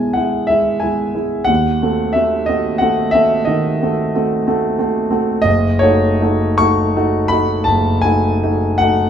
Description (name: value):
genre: classical, romantic nocturne for solo piano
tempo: 49-63 BPM (dotted quarters)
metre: 12/8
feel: rubato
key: unclear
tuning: A4 = 439 Hz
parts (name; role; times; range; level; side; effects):
- warm concert grand piano; solo; 0.0-9.1 s; F#1 to C#6; -13 LUFS; equal; none
room: wet large studio reverb, RT60 1.0 s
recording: heard from further back in the room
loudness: -13 LUFS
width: side -8 dB against mid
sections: 0.0-9.1 A section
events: none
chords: 0.0 E; 1.5 D#dim7; 5.5 D#m7b5/F#